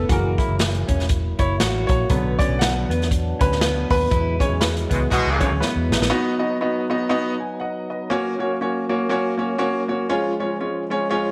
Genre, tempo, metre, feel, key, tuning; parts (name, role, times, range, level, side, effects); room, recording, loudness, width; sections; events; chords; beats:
uptempo 1960s-style soul; 120 BPM; 4/4; swing 58% on 8ths; B major from 6.1 s; A4 = 439 Hz
warm concert grand piano; accompaniment; 0.0-11.3 s; D3 to G#5; -25 LUFS; equal
percussive tonewheel organ; sustained chords; 0.0-11.3 s; E#3 to E4; -34 LUFS; equal; slow rotary speaker, overdrive
electric guitar through a small old amp; riff; 0.0-6.1 s; B3 to F#4; -30 LUFS; equal
vintage muted fingered electric bass; bass; 0.0-6.1 s; E1 to E2; -26 LUFS; equal
swinging big-band drum kit; drums; 0.1-6.1 s; hi-hat, kick drum, snare drum; -25 LUFS; equal
warm horn section; second line; 4.9-5.5 s; B2 to F#4; -26 LUFS; equal
light reverb, small room reverb; -21 LUFS; mono
0.0-6.1 A section; 6.1-11.3 B section
grand piano solo 0.0-6.1; band accent 4.1-6.1; drum fill 5.6-6.1
0.1 F#7; 2.1 Bm; 4.1 Eadd9; 6.1 B; 8.1 F#; 10.1 C#
| 0.09 0.60 1.10 1.60 | 2.10 2.61 3.11 3.61 | 4.11 4.61 5.12 5.62 | 6.12 6.62 7.12 7.62 | 8.12 8.61 9.11 9.61 | 10.11 10.61 11.11